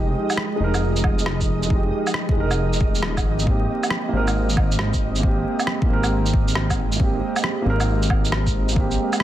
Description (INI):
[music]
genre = future garage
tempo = 136 BPM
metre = 4/4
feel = swing 66% on 16ths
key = unclear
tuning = A4 = 441 Hz
[part]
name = dark upright piano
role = accompaniment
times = 0.0-9.2 s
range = Ab3 to Bb4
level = -26 LUFS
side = right 2 dB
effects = sidechain pumping, digital delay
[part]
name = warbly tape-like pad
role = sustained chords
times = 0.0-9.2 s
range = F3 to G4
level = -29 LUFS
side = right 1 dB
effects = chorus, built-in reverb, phaser, sidechain pumping
[part]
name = dark detuned saw bass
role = bass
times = 0.0-9.0 s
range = Eb1 to Ab1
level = -22 LUFS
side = equal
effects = tube saturation, sidechain pumping
[part]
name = flickering grainy texture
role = texture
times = 0.0-9.2 s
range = Eb5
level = -34 LUFS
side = right 2 dB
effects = built-in reverb
[part]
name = electronic shaker, woodblock and rim click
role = drums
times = 0.3-9.2 s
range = none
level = -26 LUFS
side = right 1 dB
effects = overdrive, soft clipping on snare
[part]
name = electronic kick drum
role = drums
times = 1.0-8.9 s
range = none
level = -21 LUFS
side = equal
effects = none
[sound]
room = light reverb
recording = dense, heavily limited modern master, vinyl crackle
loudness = -18 LUFS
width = side -13 dB against mid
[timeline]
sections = 0.0-9.2 A section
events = none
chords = 0.0 Fm9; 3.5 Abmaj9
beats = 0.38 0.82 1.26 | 1.71 2.15 2.59 3.03 | 3.47 3.91 4.35 4.79 | 5.23 5.68 6.12 6.56 | 7.00 7.44 7.88 8.32 | 8.76 9.21